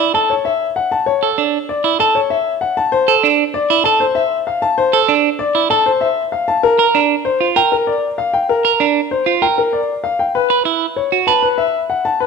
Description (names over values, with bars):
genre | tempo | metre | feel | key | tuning
classical, minimalist pattern music | 194 BPM | 6/4 | straight | unclear | A4 = 439 Hz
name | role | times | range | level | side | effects
clear concert grand piano | melody | 0.0-12.3 s | Bb4 to A5 | -16 LUFS | left 5 dB | none
semi-hollow electric guitar | arpeggios | 0.0-11.5 s | D4 to B4 | -15 LUFS | right 10 dB | none
room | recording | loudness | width
moderate scoring stage reverb, RT60 1.5 s | close, detailed microphones | -13 LUFS | side -5 dB against mid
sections
0.0-12.3 A section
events
none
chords
0.0 Dmaj7(no3); 6.6 Bb6; 10.3 F#m7